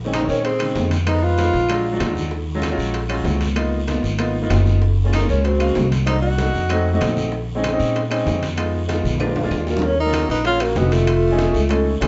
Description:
Afro-Cuban jazz; 192 BPM; 4/4; straight; Bb minor; A4 = 440 Hz
warm baby grand piano; accompaniment; 0.0-12.1 s; Db3 to F5; -26 LUFS; equal
upright bass; bass; 0.0-12.1 s; F1 to Bb2; -23 LUFS; equal
breathy tenor saxophone; melody; 0.1-2.2, 5.1-7.1, 9.7-11.9 s; A3 to Gb4; -24 LUFS; equal
breathy mellow concert flute; second line; 0.1-1.7, 5.1-7.1, 9.7-11.9 s; F4 to Eb5; -27 LUFS; equal
bongos; percussion; 0.1-12.1 s; -36 LUFS; equal
claves; percussion; 0.1-12.1 s; -41 LUFS; equal
congas; percussion; 0.1-12.1 s; -33 LUFS; equal
guiro; percussion; 0.1-12.1 s; -39 LUFS; equal
timbales; percussion; 0.1-12.1 s; -32 LUFS; equal
moderate stone room reverb, RT60 1.0 s; band playing live in one room, nothing above 7.8 kHz; -19 LUFS; mono
0.0-9.8 A section; 9.8-12.1 B section
drum fill 9.0-9.8
0.0 Bbm11; 1.1 Fm7b5; 1.7 Bb7b13; 2.3 Ebm11; 3.6 Db13; 4.8 Gbmaj7; 6.1 Cm7b5; 6.7 F7b9; 7.3 Bbm11; 8.6 Fm7b5; 9.2 Bb7; 9.8 Ebm9; 11.1 F7alt

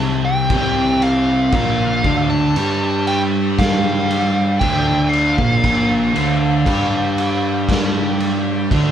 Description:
stoner and doom metal; 59 BPM; 4/4; straight; A4 = 442 Hz
fuzz lead guitar; melody; 0.0-8.7 s; F5 to A5; -21 LUFS; equal; wah, distortion
thick fuzz guitar; riff; 0.0-8.9 s; Bb2 to G4; -22 LUFS; left 6 dB; distortion
thick fuzz guitar; riff; 0.0-8.9 s; Bb2 to G4; -21 LUFS; right 6 dB; distortion
fuzz picked electric bass; bass; 0.0-8.9 s; Bb1 to G2; -21 LUFS; equal; overdrive
raw garage drum kit; drums; 0.5-8.9 s; crash cymbal, kick drum, snare drum; -22 LUFS; equal
light reverb; band playing live in one room; -14 LUFS; side -9 dB against mid
0.0-8.9 A section
0.0 N.C.; 1.5 Bb5

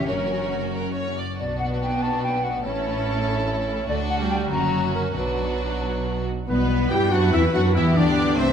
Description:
classical; 90-98 BPM (dotted quarters); 6/8; rubato; B minor; A4 = 440 Hz
clear chamber violin section; melody; 0.0-8.5 s; F#4 to G5; -32 LUFS; left 1 dB
clear symphonic violin section; second line; 0.0-8.5 s; C#4 to E5; -33 LUFS; left 2 dB
concert flute; second line; 0.0-6.2 s; A#4 to A#5; -28 LUFS; left 1 dB
rich symphonic viola section; accompaniment; 0.0-8.5 s; F#3 to G4; -28 LUFS; right 3 dB
concert harp; arpeggios; 0.0-8.5 s; E2 to B5; -31 LUFS; left 7 dB
rich symphonic cello section; bass; 0.0-8.5 s; D2 to G3; -28 LUFS; right 2 dB
rich symphonic double bass section; bass; 0.0-8.5 s; F#1 to G2; -28 LUFS; right 2 dB
clear clarinet; second line; 6.5-8.5 s; G3 to E4; -28 LUFS; left 1 dB
warm oboe; second line; 6.5-8.5 s; B4 to G5; -32 LUFS; left 1 dB
mellow French horn section; sustained chords; 6.5-8.5 s; B3 to G4; -24 LUFS; left 4 dB
wet recital hall reverb, RT60 1.4 s; -20 LUFS; side -8 dB against mid
0.0-6.5 A section; 6.5-8.5 B section
0.1 F#; 1.4 Bm; 2.7 A; 3.9 D; 4.5 F#; 5.2 Bm; 6.5 Em/B; 7.8 Em

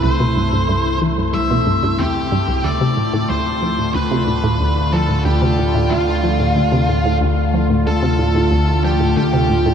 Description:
ambient, sequencer-driven space music; 92 BPM; 4/4; straight; D dorian; A4 = 441 Hz
octave-fuzz lead guitar; melody; 0.0-9.7 s; F4 to E5; -21 LUFS; equal; distortion, ping-pong delay
evolving wavetable pad; sustained chords; 0.0-9.7 s; C3 to F4; -19 LUFS; left 1 dB; chorus, built-in reverb
resonant blip pluck; riff; 0.0-9.7 s; C2 to F3; -20 LUFS; equal; chorus, ping-pong delay
warm sub bass; bass; 0.0-9.7 s; C2 to D2; -22 LUFS; equal
wet huge ambient reverb, RT60 8.5 s; in a vast, echoing space; -14 LUFS; side -8 dB against mid
0.0-9.7 A section
0.0 C; 2.6 Dm

